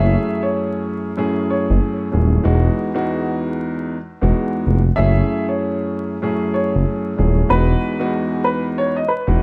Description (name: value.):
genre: hip hop, boom-bap hip-hop.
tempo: 95 BPM.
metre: 4/4.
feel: swing 61% on 16ths.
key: F# dorian.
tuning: A4 = 442 Hz.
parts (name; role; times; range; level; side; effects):
warm upright piano; melody; 0.0-9.4 s; B4 to E5; -25 LUFS; equal; high-pass filter, low-pass filter.
dark baby grand piano; accompaniment; 0.0-9.4 s; E2 to G#4; -22 LUFS; equal; high-pass filter, low-pass filter.
smooth synth bass; bass; 0.0-9.4 s; D#1 to F#1; -18 LUFS; equal; none.
room: small room ambience.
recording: vinyl crackle.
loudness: -19 LUFS.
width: mono.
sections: 0.0-9.4 A section.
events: none.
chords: 0.0 F#m7; 2.5 Emaj7; 5.0 F#m7; 7.5 Emaj7.